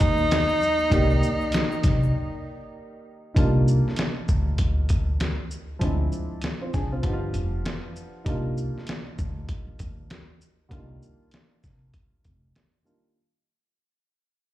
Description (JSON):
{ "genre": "hip hop, jazz-hop", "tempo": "98 BPM", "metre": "4/4", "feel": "swing 60% on 16ths", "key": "C minor", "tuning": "A4 = 437 Hz", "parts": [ { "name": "clear tenor saxophone", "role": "melody", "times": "0.0-2.7 s", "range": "Eb4", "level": "-24 LUFS", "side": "equal", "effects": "slapback echo, analog delay" }, { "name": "dark baby grand piano", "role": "accompaniment", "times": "0.0-13.2 s", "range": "D3 to D5", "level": "-32 LUFS", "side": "right 1 dB", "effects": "slapback echo" }, { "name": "upright bass", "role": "bass", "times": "0.0-12.5 s", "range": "F1 to Eb2", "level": "-24 LUFS", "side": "equal", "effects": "none" }, { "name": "trip hop sampler-style drum kit", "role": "drums", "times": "0.0-13.0 s", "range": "hi-hat, kick drum, shaker, snare drum", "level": "-26 LUFS", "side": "equal", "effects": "overdrive" }, { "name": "congas and egg shaker", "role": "percussion", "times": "0.2-2.1 s", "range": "none", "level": "-36 LUFS", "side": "left 2 dB", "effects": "slapback echo" } ], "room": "small room ambience", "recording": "live gig heard through the venue's PA, club reverb", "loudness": "-22 LUFS", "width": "side -14 dB against mid", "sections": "0.0-3.4 A section; 3.4-13.2 B section", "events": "break 2.1-3.4; fade-out 3.4-13.2", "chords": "0.0 Cm11; 5.8 Dm7b5; 7.0 G7; 8.3 Cm11" }